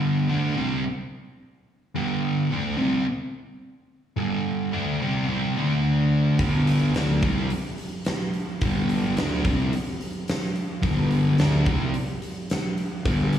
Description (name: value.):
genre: blues rock power trio and southern rock.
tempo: 108 BPM.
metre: 4/4.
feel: straight.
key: unclear.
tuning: A4 = 438 Hz.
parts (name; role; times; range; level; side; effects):
sludgy distorted guitar; riff; 0.0-13.4 s; G2 to D4; -23 LUFS; equal; overdrive, slapback echo.
fuzz fingered electric bass; bass; 6.4-13.4 s; G1 to D2; -26 LUFS; equal; overdrive.
huge arena drum kit; drums; 6.4-13.4 s; hi-hat, kick drum, snare drum; -27 LUFS; equal; none.
room: light reverb, studio reverb.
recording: live gig heard through the venue's PA, recital hall reverb, small room ambience.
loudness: -22 LUFS.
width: side -10 dB against mid.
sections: 0.0-13.4 A section.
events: none.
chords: 0.0 G5; 5.6 D5; 6.4 G5.